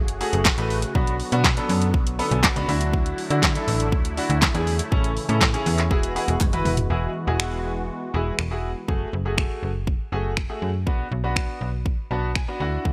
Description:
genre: dance-pop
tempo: 121 BPM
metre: 4/4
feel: straight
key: F# minor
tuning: A4 = 440 Hz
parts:
  - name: filtered supersaw swell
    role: sustained chords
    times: 0.0-8.9 s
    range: C#3 to G#4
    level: -34 LUFS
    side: equal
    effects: phaser, sidechain pumping
  - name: slap-like FM bass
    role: bass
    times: 0.0-12.9 s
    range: E1 to D3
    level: -27 LUFS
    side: equal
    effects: sidechain pumping
  - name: house drum kit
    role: drums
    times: 0.1-12.9 s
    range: finger snaps, handclaps, hi-hat, kick drum, snare drum, toms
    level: -25 LUFS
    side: equal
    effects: none
  - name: clear concert grand piano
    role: accompaniment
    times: 0.2-12.9 s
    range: A3 to B5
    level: -30 LUFS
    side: equal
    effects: lush chorus, sidechain pumping
  - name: group handclap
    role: percussion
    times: 0.5-6.5 s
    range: none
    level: -34 LUFS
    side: equal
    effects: none
room: light reverb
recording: bright 1980s-style digital production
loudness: -23 LUFS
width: mono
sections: 0.0-6.9 A section; 6.9-8.9 B section; 8.9-12.9 C section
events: grand piano fill 1.9-2.9, 11.9-12.9; drum fill 6.4-6.9; break 6.9-8.9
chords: 0.0 F#madd9; 0.9 Bm; 2.7 Dadd9; 4.9 A; 5.9 Eadd9; 8.9 F#madd9; 10.9 Bm

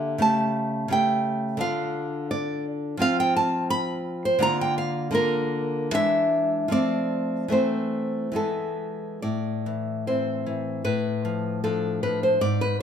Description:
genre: romantic piece for solo classical guitar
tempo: 66-88 BPM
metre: 2/4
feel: rubato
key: D minor, A minor from 3.0 s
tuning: A4 = 440 Hz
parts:
  - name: nylon-string guitar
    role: solo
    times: 0.0-12.8 s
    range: G#2 to B5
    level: -23 LUFS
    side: equal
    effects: none
room: moderate large studio reverb, RT60 1.2 s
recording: band playing live in one room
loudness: -23 LUFS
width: side -8 dB against mid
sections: 0.0-9.2 A section; 9.2-12.8 B section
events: none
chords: 0.2 A7/C#; 1.6 Dm; 3.0 F5; 4.4 Bb/D; 6.0 E7; 6.7 F; 7.5 Am/E; 8.4 E; 9.2 Am; 10.9 Bm7b5/A

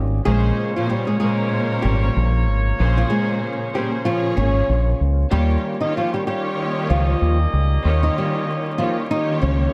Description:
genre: hip hop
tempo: 95 BPM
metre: 4/4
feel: swing 59% on 16ths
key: Bb dorian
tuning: A4 = 438 Hz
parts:
  - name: flamenco guitar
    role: melody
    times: 0.0-9.7 s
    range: F3 to Eb5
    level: -25 LUFS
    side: equal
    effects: none
  - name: percussive tonewheel organ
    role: sustained chords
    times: 0.0-9.7 s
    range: Db3 to G4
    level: -35 LUFS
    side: equal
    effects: none
  - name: deep dub fingered electric bass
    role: bass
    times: 0.0-9.7 s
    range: Ab1 to Eb2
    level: -20 LUFS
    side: equal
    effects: none
  - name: dark studio string section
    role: accompaniment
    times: 0.3-9.7 s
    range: Bb2 to Db5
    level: -27 LUFS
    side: equal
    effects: none
  - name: warm horn section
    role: stabs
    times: 0.3-9.7 s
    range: Bb3 to Eb5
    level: -32 LUFS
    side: equal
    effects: delay
room: small room reverb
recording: vinyl crackle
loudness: -20 LUFS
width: mono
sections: 0.0-9.7 A section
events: none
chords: 0.3 Bbm7; 5.3 Eb7

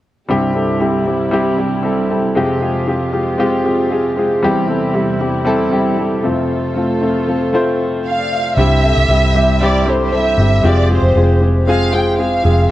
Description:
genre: piano-driven pop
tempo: 116 BPM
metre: 4/4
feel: straight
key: C major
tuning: A4 = 440 Hz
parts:
  - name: clear concert grand piano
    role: accompaniment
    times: 0.3-12.7 s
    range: C2 to F5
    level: -15 LUFS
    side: equal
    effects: none
  - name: dark studio string section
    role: sustained chords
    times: 0.3-8.5 s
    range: E2 to A4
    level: -25 LUFS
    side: right 2 dB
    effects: none
  - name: rich studio violin section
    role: melody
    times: 8.1-12.7 s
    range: C5 to G5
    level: -16 LUFS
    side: right 1 dB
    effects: none
  - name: vintage muted fingered electric bass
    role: bass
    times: 8.6-12.7 s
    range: F1 to C2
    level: -14 LUFS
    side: equal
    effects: none
room: light reverb, studio reverb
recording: worn, warbling old tape, cassette tape, warbly pitch drift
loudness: -13 LUFS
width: side -14 dB against mid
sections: 0.3-8.6 A section; 8.6-12.7 B section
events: none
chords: 0.3 C; 2.4 Fmadd9; 4.4 C/E; 6.2 F; 8.6 C; 10.6 Fmadd9

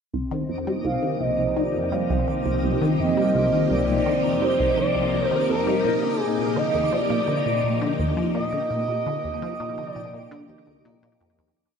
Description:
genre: ambient, sequencer-driven space music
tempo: 84 BPM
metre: 4/4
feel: straight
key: C minor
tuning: A4 = 440 Hz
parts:
  - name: phased string machine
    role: sustained chords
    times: 0.1-11.6 s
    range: C3 to G4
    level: -27 LUFS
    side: equal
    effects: ensemble chorus, phaser
  - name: vibraphone with soft mallets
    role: arpeggios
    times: 0.1-11.6 s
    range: Bb3 to Eb5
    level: -30 LUFS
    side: moving between left 6 dB and right 3 dB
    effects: auto-pan, low-pass filter, tape echo
  - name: resonant blip pluck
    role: riff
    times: 0.1-11.5 s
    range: C2 to G3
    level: -26 LUFS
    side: equal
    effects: phaser, tape echo
  - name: twinkling granular texture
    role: texture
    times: 0.5-11.6 s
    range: Eb4 to D6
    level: -34 LUFS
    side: equal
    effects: built-in reverb
  - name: expressive portamento lead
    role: melody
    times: 0.8-10.8 s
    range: Bb4 to F5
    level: -26 LUFS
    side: equal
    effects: chorus, tape echo
room: wet plate reverb, RT60 2.5 s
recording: nothing above 10.8 kHz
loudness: -21 LUFS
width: side -6 dB against mid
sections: 0.1-11.6 A section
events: filter sweep on synth arpeggio sound 0.1-11.6; filter sweep on vibraphone 0.1-11.6; fade-out 7.8-11.6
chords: 0.1 Cmadd9; 5.9 Bbsus4

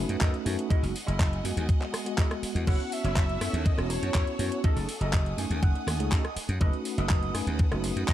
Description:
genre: nu-disco, nu disco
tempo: 122 BPM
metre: 4/4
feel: straight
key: F# dorian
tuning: A4 = 441 Hz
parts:
  - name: mellow tine electric piano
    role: accompaniment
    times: 0.0-8.1 s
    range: G#3 to G#5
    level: -34 LUFS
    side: equal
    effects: medium stereo tremolo, sidechain pumping, analog delay
  - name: bright symphonic violin section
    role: sustained chords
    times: 0.0-8.1 s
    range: A3 to E6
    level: -42 LUFS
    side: equal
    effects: sidechain pumping
  - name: slap bass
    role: bass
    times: 0.0-8.1 s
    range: E1 to F#2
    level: -30 LUFS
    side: equal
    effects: none
  - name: electric guitar with an envelope filter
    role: riff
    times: 0.1-8.1 s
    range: E4 to G#5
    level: -38 LUFS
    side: right 3 dB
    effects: wide subtle chorus, analog delay
  - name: pop drum kit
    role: drums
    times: 0.1-8.1 s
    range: crash cymbal, handclaps, hi-hat, rim click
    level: -35 LUFS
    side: equal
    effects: small room ambience
  - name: electronic kick drum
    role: drums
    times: 0.2-8.1 s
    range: none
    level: -24 LUFS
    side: equal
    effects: small room ambience
  - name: wide unison lead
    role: melody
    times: 2.7-5.1 s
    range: A4 to F#5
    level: -36 LUFS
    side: left 1 dB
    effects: wide subtle chorus, tape echo
room: little or no reverb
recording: none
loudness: -25 LUFS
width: side -12 dB against mid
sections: 0.0-8.1 A section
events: clean electric guitar fill 5.1-6.6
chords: 0.0 B7/F#; 0.7 Emaj9/F#; 2.7 A6/F#; 4.6 F#m69; 6.6 B7/F#

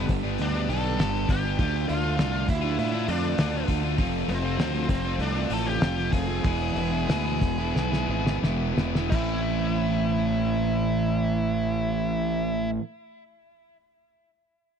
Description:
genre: classic rock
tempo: 85-100 BPM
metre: 4/4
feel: straight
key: A minor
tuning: A4 = 445 Hz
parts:
  - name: octave-fuzz lead guitar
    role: melody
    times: 0.0-12.7 s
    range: C4 to A4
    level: -31 LUFS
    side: left 1 dB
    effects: distortion
  - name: crunchy overdriven guitar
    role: riff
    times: 0.0-12.8 s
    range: E2 to G4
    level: -30 LUFS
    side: left 13 dB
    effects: none
  - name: overdriven electric guitar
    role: riff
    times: 0.0-12.8 s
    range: G2 to F4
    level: -29 LUFS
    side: right 16 dB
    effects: none
  - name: fuzz fingered electric bass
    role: bass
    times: 0.0-12.8 s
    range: E1 to A2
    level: -29 LUFS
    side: equal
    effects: overdrive
  - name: cloth-damped thuddy drum kit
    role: drums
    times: 0.1-9.3 s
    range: crash cymbal, hi-hat, kick drum, snare drum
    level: -28 LUFS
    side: left 1 dB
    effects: none
room: small room ambience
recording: dry, close 1970s-style studio recording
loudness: -23 LUFS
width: side -7 dB against mid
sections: 0.0-9.1 A section; 9.1-11.9 B section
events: slowing down 4.0-9.1; drum fill 7.7-9.1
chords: 0.0 G; 1.6 Dm; 4.0 F; 6.4 E; 9.1 Am

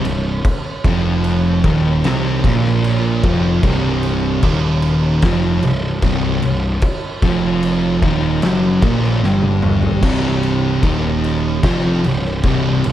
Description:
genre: stoner and doom metal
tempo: 75 BPM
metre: 4/4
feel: straight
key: C minor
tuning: A4 = 439 Hz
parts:
  - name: thick fuzz guitar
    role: riff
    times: 0.0-12.9 s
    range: C2 to C4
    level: -20 LUFS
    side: left 6 dB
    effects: distortion
  - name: thick fuzz guitar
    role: riff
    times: 0.0-12.9 s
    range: C2 to C4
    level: -18 LUFS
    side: right 5 dB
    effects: distortion
  - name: fuzz picked electric bass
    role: bass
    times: 0.0-12.9 s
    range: C1 to C2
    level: -21 LUFS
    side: left 1 dB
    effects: overdrive, tube saturation
  - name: oversized low-tuned drum kit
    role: drums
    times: 0.0-12.9 s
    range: crash cymbal, kick drum, snare drum, toms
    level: -20 LUFS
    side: equal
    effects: none
room: light reverb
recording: dark, warm production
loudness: -14 LUFS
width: side -12 dB against mid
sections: 0.0-12.9 A section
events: drum fill 9.2-10.0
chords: 0.0 Cm

